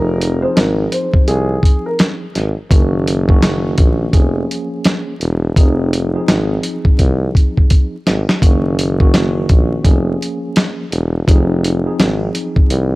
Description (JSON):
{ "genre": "hip hop, boom-bap hip-hop", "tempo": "84 BPM", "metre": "4/4", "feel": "swing 63% on 16ths", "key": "F phrygian", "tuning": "A4 = 440 Hz", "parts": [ { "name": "dark upright piano", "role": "melody", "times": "0.0-2.0 s", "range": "Ab4 to C5", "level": "-21 LUFS", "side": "equal", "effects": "high-pass filter, low-pass filter, analog delay" }, { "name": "mellow tine electric piano", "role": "accompaniment", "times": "0.0-13.0 s", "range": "Eb3 to Ab4", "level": "-22 LUFS", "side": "equal", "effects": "medium stereo tremolo, high-pass filter, low-pass filter" }, { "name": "warm tuba", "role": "bass", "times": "0.0-13.0 s", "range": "E1 to C2", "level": "-17 LUFS", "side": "equal", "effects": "tube saturation" }, { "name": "dusty soul sampler-style drum kit", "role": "drums", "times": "0.2-12.9 s", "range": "hi-hat, kick drum, snare drum", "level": "-12 LUFS", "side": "equal", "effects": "none" } ], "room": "digital ambience", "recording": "dry, gritty hardware recording, transformer saturation, vinyl crackle", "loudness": "-12 LUFS", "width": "side -21 dB against mid", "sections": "0.0-8.4 A section; 8.4-13.0 A section", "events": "drum fill 7.0-8.4", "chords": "0.0 Fm7; 2.7 Gb6; 4.1 Db6/F; 5.6 Fm7; 8.4 Gb6; 9.8 Db6/F; 11.3 Fm7" }